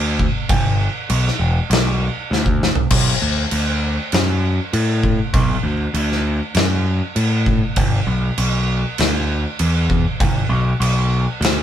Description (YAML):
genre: stoner and doom metal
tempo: 99 BPM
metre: 4/4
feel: straight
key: B minor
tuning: A4 = 444 Hz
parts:
  - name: growling picked electric bass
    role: bass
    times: 0.0-11.6 s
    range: E1 to A2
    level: -18 LUFS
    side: equal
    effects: overdrive
  - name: big rock drum kit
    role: drums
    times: 0.2-11.6 s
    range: crash cymbal, kick drum, snare drum, toms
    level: -19 LUFS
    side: equal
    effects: none
room: light reverb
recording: band playing live in one room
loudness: -16 LUFS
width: side -10 dB against mid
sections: 0.0-2.9 A section; 2.9-11.6 B section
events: drum fill 2.3-2.9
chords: none